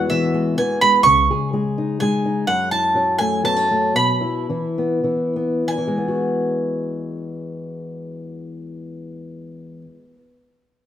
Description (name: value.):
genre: acoustic folk duo or small band.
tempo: 91-127 BPM.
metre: 3/4.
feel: straight.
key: E major.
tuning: A4 = 439 Hz.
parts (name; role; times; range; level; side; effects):
bowl-back mandolin; melody; 0.0-9.8 s; E5 to C#6; -18 LUFS; right 3 dB; none.
fingerpicked old ladder-braced acoustic guitar; accompaniment; 0.0-10.3 s; E2 to G#4; -22 LUFS; left 2 dB; none.
upright bass; bass; 1.0-1.3 s; C#2; -27 LUFS; right 1 dB; none.
room: moderate large studio reverb, RT60 1.1 s.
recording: band playing live in one room.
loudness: -17 LUFS.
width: side -10 dB against mid.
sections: 0.0-5.7 A section; 5.7-9.6 B section.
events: slowing down 2.5-5.7.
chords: 0.0 Eadd9; 1.0 C#sus2; 2.5 F#m7; 3.9 Bsus4; 5.7 Eadd9.